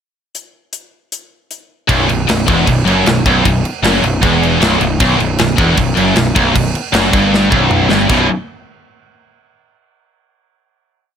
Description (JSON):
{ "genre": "heavy metal", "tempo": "155 BPM", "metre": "4/4", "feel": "straight", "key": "unclear", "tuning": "A4 = 440 Hz", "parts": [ { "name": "tight metal drum kit", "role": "drums", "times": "0.3-8.2 s", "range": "crash cymbal, hi-hat, kick drum, snare drum, toms", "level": "-16 LUFS", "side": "equal", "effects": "none" }, { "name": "fuzz guitar", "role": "riff", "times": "1.9-8.3 s", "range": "B1 to B2", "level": "-19 LUFS", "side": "left 1 dB", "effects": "distortion" }, { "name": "heavy high-gain guitar", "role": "riff", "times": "1.9-8.3 s", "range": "B1 to B2", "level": "-17 LUFS", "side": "left 12 dB", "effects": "distortion" }, { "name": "scooped high-gain guitar", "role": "riff", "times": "1.9-8.3 s", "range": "B1 to B2", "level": "-16 LUFS", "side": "right 10 dB", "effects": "distortion" }, { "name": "fuzz picked electric bass", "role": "bass", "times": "1.9-8.3 s", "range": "B0 to G1", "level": "-17 LUFS", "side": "equal", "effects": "overdrive" } ], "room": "little or no reverb", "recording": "none", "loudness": "-10 LUFS", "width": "side -8 dB against mid", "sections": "0.3-1.9 pickup bar; 1.9-8.1 riff; 8.1-9.6 final chord", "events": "drum fill 7.3-8.1", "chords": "0.3 N.C.; 1.9 B5", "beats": "| 0.34 0.73 1.12 1.51 | 1.90 2.29 2.68 3.06 | 3.45 3.84 4.23 4.62 | 5.00 5.39 5.78 6.16 | 6.55 6.94 7.32 7.71 | 8.10" }